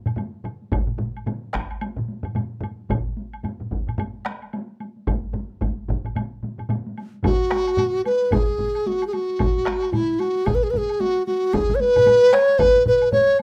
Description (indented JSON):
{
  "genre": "japanese traditional, taiko drum ensemble",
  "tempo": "111 BPM",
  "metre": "4/4",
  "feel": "swing 60% on 16ths",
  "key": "F# suspended pentatonic",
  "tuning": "A4 = 440 Hz",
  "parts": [
    { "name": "solo taiko drums", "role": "percussion", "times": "0.1-13.4 s", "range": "none", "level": "-36 LUFS", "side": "equal", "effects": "none" },
    { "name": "taiko ensemble", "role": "percussion", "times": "0.1-13.3 s", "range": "none", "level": "-34 LUFS", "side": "equal", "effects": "none" },
    { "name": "taiko ensemble", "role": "percussion", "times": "0.1-13.3 s", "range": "none", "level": "-32 LUFS", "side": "equal", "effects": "none" },
    { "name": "woodblock", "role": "percussion", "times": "0.1-13.4 s", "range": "none", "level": "-38 LUFS", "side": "equal", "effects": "none" },
    { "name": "taiko ensemble", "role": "percussion", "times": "0.7-12.7 s", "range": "none", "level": "-28 LUFS", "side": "equal", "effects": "none" },
    { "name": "mellow hollow large dizi", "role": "melody", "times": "7.3-13.4 s", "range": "E4 to C#5", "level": "-20 LUFS", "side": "equal", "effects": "none" }
  ],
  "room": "moderate small room ambience, RT60 0.5 s",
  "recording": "rough home demo mix",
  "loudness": "-21 LUFS",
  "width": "mono",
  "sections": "0.0-7.2 A section; 7.2-13.4 B section",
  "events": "speeding up 0.0-13.4",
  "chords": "none",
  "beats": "0.17 | 0.72 1.26 1.81 2.36 | 2.90 3.45 3.99 4.53 | 5.08 5.62 6.16 6.70 | 7.24 7.78 8.31 8.85 | 9.39 9.93 10.46 11.00 | 11.53 12.06 12.60 13.13"
}